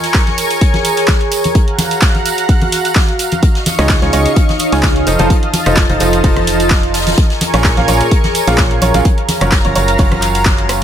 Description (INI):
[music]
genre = piano house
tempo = 128 BPM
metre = 4/4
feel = swing 54% on 16ths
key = unclear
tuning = A4 = 439 Hz
[part]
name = analog string pad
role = sustained chords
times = 0.0-10.8 s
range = Bb4 to Db6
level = -20 LUFS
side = equal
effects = ensemble chorus, sidechain pumping
[part]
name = punchy analog drum machine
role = drums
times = 0.0-10.8 s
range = handclaps, hi-hat, rim click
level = -19 LUFS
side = right 1 dB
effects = none
[part]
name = street-band drum kit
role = drums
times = 0.0-10.8 s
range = hi-hat, snare drum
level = -26 LUFS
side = left 2 dB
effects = high-pass filter on hats, high-pass filter on snare, high-pass filter on room
[part]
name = tambourine and congas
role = percussion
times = 0.0-10.8 s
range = none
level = -22 LUFS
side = equal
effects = none
[part]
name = warbly tape-like pad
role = texture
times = 0.0-10.8 s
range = Gb3 to Bb5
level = -20 LUFS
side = right 1 dB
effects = chorus, built-in reverb, sidechain pumping
[part]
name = electronic kick drum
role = drums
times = 0.1-10.6 s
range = none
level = -12 LUFS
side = equal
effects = none
[part]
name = clear grand piano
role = riff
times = 3.8-10.8 s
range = Bb2 to A5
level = -16 LUFS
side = right 2 dB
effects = sidechain pumping, dub echo
[part]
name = organ-like FM bass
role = bass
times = 3.8-10.8 s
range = F1 to Db2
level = -17 LUFS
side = equal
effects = sidechain pumping
[sound]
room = light reverb, studio ambience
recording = none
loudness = -10 LUFS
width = side -9 dB against mid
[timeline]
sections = 0.0-10.8 A section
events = band accent 10.5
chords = 0.0 Bbm7; 1.6 Gbmaj7; 3.4 Dbadd9; 5.1 F7; 7.2 Bbm7; 9.1 Gbmaj7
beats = 0.15 0.61 1.08 | 1.55 2.02 2.49 2.96 | 3.43 3.90 4.37 4.83 | 5.30 5.77 6.24 6.71 | 7.18 7.65 8.12 8.58 | 9.05 9.52 9.99 10.46